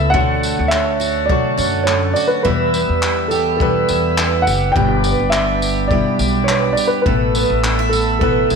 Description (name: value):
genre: acoustic pop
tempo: 104 BPM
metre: 4/4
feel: straight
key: D major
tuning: A4 = 442 Hz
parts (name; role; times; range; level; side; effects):
- dark upright piano; melody; 0.0-8.6 s; A4 to G5; -20 LUFS; equal; none
- picked twelve-string acoustic guitar; accompaniment; 0.0-8.6 s; G2 to A4; -20 LUFS; right 12 dB; none
- warm upright piano; accompaniment; 0.0-8.6 s; G3 to C#6; -24 LUFS; left 13 dB; none
- tonewheel organ; sustained chords; 0.0-8.6 s; G4 to E6; -24 LUFS; left 1 dB; slow rotary speaker
- upright bass; bass; 0.0-8.6 s; F#1 to F#2; -21 LUFS; left 1 dB; none
- jazz brush drum kit; drums; 0.1-8.6 s; handclaps, kick drum, tambourine; -22 LUFS; left 3 dB; none
room: light reverb, studio ambience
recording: 1960s-style stereo with parts hard left and right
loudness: -14 LUFS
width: side -5 dB against mid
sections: 0.0-8.6 A section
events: none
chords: 0.1 Dmaj7; 2.5 Em; 4.8 G; 7.1 Asus2